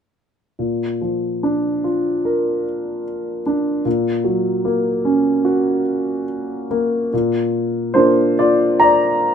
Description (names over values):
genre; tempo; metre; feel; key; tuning
classical, lyrical solo piano; 70-76 BPM; 4/4; rubato; unclear; A4 = 440 Hz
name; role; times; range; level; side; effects
warm grand piano; solo; 0.6-9.3 s; Bb2 to Bb5; -16 LUFS; equal; none
room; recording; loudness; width
light reverb; minimal, uncompressed stereo recording; -16 LUFS; side -7 dB against mid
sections
0.6-7.1 A section; 7.1-9.3 B section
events
none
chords
0.6 Bb; 3.9 Gb/Bb; 7.1 Bb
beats
| 0.60 1.43 2.26 3.06 | 3.86 4.66 5.45 6.28 | 7.13 7.96 8.80